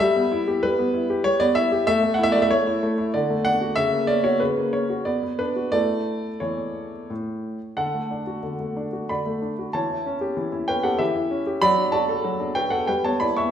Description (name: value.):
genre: classical-period piano sonatina.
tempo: 87-97 BPM.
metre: 3/4.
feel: rubato.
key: D major.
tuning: A4 = 441 Hz.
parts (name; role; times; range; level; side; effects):
warm grand piano; solo; 0.0-13.5 s; A2 to C#6; -20 LUFS; equal; none.
room: wet recital hall reverb, RT60 1.4 s.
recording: minimal, uncompressed stereo recording.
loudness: -21 LUFS.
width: side -9 dB against mid.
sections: 0.0-7.8 A section; 7.8-13.5 B section.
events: none.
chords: 0.0 Em/G; 1.9 A; 3.1 D; 3.8 F#/C#; 5.1 Bm; 5.7 A; 7.8 D; 9.7 A7/E; 11.6 D/F#; 12.9 Em/G.